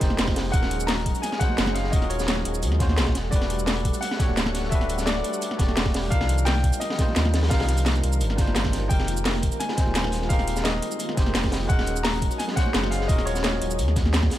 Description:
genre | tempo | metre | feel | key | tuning
liquid drum and bass | 172 BPM | 4/4 | straight | unclear | A4 = 440 Hz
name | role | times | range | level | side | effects
bright grand piano | melody | 0.0-13.9 s | Db5 to Bb5 | -31 LUFS | left 2 dB | digital delay
bell-like tine electric piano | accompaniment | 0.0-14.3 s | G3 to D5 | -31 LUFS | equal | dub echo
warm analog pad | sustained chords | 0.0-14.4 s | Eb3 to F#5 | -34 LUFS | equal | chorus
sub bass with octave | bass | 0.0-14.3 s | D1 to Eb2 | -26 LUFS | equal | none
crunchy breakbeat drum kit | drums | 0.0-14.4 s | hi-hat, snare drum | -32 LUFS | equal | high-pass filter on hats, small room ambience, high-pass filter on snare, high-pass filter on room
electronic kick drum | drums | 0.0-14.3 s | none | -23 LUFS | equal | small room ambience
garage drum kit | drums | 0.0-14.4 s | hi-hat, shaker, snare drum | -28 LUFS | equal | small room ambience
congas | percussion | 0.1-14.3 s | none | -35 LUFS | right 2 dB | none
room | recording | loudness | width
small room ambience | none | -21 LUFS | side -13 dB against mid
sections
0.0-14.4 A section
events
none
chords
0.0 Fm11; 0.5 Ebm11; 3.2 Em11; 6.1 Cm11; 8.9 Fm11; 11.7 Ebm11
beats
0.19 | 0.54 0.88 1.23 1.58 | 1.93 2.28 2.63 2.98 | 3.33 3.67 4.02 4.37 | 4.72 5.07 5.42 5.77 | 6.12 6.46 6.81 7.16 | 7.51 7.86 8.21 8.56 | 8.91 9.26 9.61 9.95 | 10.30 10.65 11.00 11.35 | 11.70 12.05 12.39 12.74 | 13.09 13.44 13.79 14.14

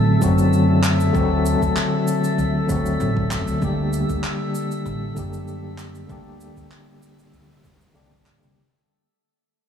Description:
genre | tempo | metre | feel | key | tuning
organic downtempo | 97 BPM | 4/4 | swing 53% on 16ths | unclear | A4 = 440 Hz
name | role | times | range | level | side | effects
overdriven tine electric piano | accompaniment | 0.0-8.6 s | D3 to G4 | -22 LUFS | left 1 dB | fast tremolo, sidechain pumping, digital delay
guzheng | arpeggios | 0.0-1.2 s | none | barely audible | none | none
upright bass | bass | 0.0-8.5 s | A1 to F#2 | -23 LUFS | right 1 dB | none
drifting glass-harmonics texture | texture | 0.0-8.6 s | A3 to A4 | -28 LUFS | left 3 dB | chorus, built-in reverb
electronic cabasa and handclaps | drums | 0.2-8.5 s | none | -30 LUFS | equal | none
electronic kick drum | drums | 0.2-8.4 s | none | -26 LUFS | right 1 dB | none
room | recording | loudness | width
light reverb, digital ambience | studio ambience | -18 LUFS | side -8 dB against mid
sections
0.0-8.6 A section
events
fade-out 0.0-8.6; filter sweep on upright bass 0.0-8.6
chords
0.0 D7; 3.6 Gm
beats
0.53 | 1.14 1.76 2.38 3.00 | 3.62 4.24 4.86 5.47 | 6.09 6.71 7.33 7.95

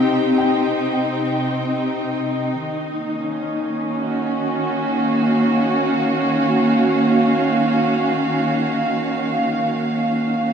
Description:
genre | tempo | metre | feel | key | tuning
ambient | free time | none | none | unclear | A4 = 440 Hz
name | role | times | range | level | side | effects
felt-muted upright piano | melody | 0.0-2.0 s | F5 to G5 | -30 LUFS | equal | none
dark studio string section | sustained chords | 0.0-10.5 s | C3 to G5 | -17 LUFS | equal | shimmer reverb
room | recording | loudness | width
wet plate reverb, RT60 3.6 s | echo-heavy mix, small room ambience | -17 LUFS | side -7 dB against mid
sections
0.0-10.5 A section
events
none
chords
0.0 Cm; 2.6 Ebm7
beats
free time

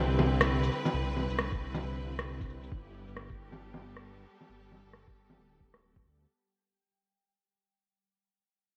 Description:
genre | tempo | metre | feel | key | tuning
future garage | 135 BPM | 4/4 | swing 61% on 16ths | unclear | A4 = 439 Hz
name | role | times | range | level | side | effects
rich symphonic string section | sustained chords | 0.0-6.3 s | D3 to B4 | -40 LUFS | equal | sidechain pumping
swelling detuned saw bass | bass | 0.0-6.3 s | D1 to D2 | -36 LUFS | equal | sidechain pumping
backwards swelling texture | texture | 0.0-6.3 s | G3 to G5 | -47 LUFS | equal | built-in reverb, ensemble chorus
electronic bongos, rim click and shaker | drums | 0.2-6.3 s | none | -33 LUFS | equal | low-pass filter on perc, low-pass filter on snare, low-pass filter on room, gated reverb
electronic kick drum | drums | 1.5-6.0 s | none | -44 LUFS | equal | none
room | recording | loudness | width
moderate lush hall reverb, RT60 1.9 s | bright 1980s-style digital production, vinyl crackle | -31 LUFS | mono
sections
0.0-6.3 A section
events
fade-out 0.0-6.3; filter sweep on drum 0.0-6.3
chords
0.0 Cmaj9; 2.7 Gadd9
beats
0.05 0.49 | 0.94 1.38 1.83 2.27 | 2.72 3.16 3.60 4.05 | 4.49 4.94 5.38 5.83

